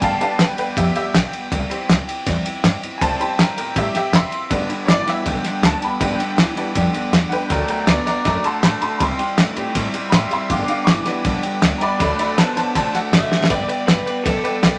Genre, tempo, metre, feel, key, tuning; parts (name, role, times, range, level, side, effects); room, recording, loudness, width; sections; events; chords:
rockabilly; 160 BPM; 4/4; straight; G major; A4 = 440 Hz
picked steel-string acoustic guitar; accompaniment; 0.0-14.8 s; G2 to A4; -29 LUFS; equal
tack piano; accompaniment; 0.0-14.7 s; F#3 to D6; -25 LUFS; equal
upright bass; bass; 0.0-14.8 s; F1 to C3; -28 LUFS; equal
cloth-damped thuddy drum kit; drums; 0.0-14.7 s; kick drum, ride cymbal, snare drum; -21 LUFS; equal
electric guitar through a small old amp; riff; 4.5-13.5 s; G2 to B3; -28 LUFS; equal
electric guitar through a small old amp; melody; 13.1-14.8 s; A4 to E5; -26 LUFS; equal; spring reverb
moderate studio reverb, RT60 0.6 s; -19 LUFS; mono
0.0-13.5 A section; 13.5-14.8 B section
honky-tonk piano solo 0.0-13.5; drum fill 13.3
0.0 G; 1.5 C; 4.5 G; 7.5 D; 9.0 C; 10.5 G; 12.0 D; 13.5 G